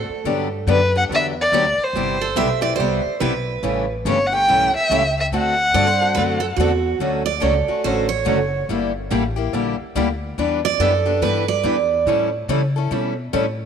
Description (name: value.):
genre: acoustic string swing (jazz manouche).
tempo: 142 BPM.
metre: 4/4.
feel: swing 62% on 8ths.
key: D major from 7.0 s.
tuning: A4 = 440 Hz.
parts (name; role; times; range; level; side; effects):
picked steel-string acoustic guitar; second line; 0.0-12.0 s; F#4 to E5; -22 LUFS; right 8 dB; none.
upright bass; bass; 0.0-13.7 s; F#1 to C#3; -25 LUFS; left 1 dB; none.
picked steel-string acoustic guitar; accompaniment; 0.3-13.4 s; C3 to A4; -24 LUFS; left 12 dB; none.
picked steel-string acoustic guitar; accompaniment; 0.3-13.4 s; C3 to B4; -26 LUFS; right 9 dB; none.
warm violin; melody; 0.7-6.6 s; B4 to G5; -18 LUFS; left 1 dB; none.
room: moderate plate reverb, RT60 3.0 s.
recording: 1960s-style stereo with parts hard left and right.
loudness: -17 LUFS.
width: side -7 dB against mid.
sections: 0.0-7.0 A section; 7.0-13.7 B section.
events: steel-string acoustic guitar solo 7.0-13.7.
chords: 0.3 Gmaj7; 2.0 Cmaj7/G; 3.6 A7; 5.3 D7; 7.0 Dmaj7; 8.7 Gm6; 10.4 Em7; 12.1 A7.